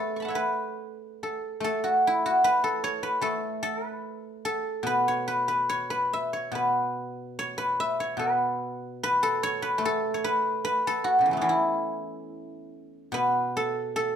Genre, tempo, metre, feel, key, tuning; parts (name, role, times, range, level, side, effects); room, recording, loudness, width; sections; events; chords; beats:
chinese traditional, Chinese solo plucked strings; 69-77 BPM; 2/4; rubato; E zhi mode; A4 = 440 Hz
guzheng; solo; 0.0-14.2 s; B2 to C#6; -25 LUFS; equal
moderate large studio reverb, RT60 1.1 s; band playing live in one room; -24 LUFS; side -8 dB against mid
0.0-13.1 A section; 13.1-14.2 B section
0.78 | 1.62 2.43 | 3.22 4.03 | 4.85 5.68 | 6.54 7.39 | 8.21 9.01 | 9.81 10.61 | 11.44 12.29 | 13.14 13.96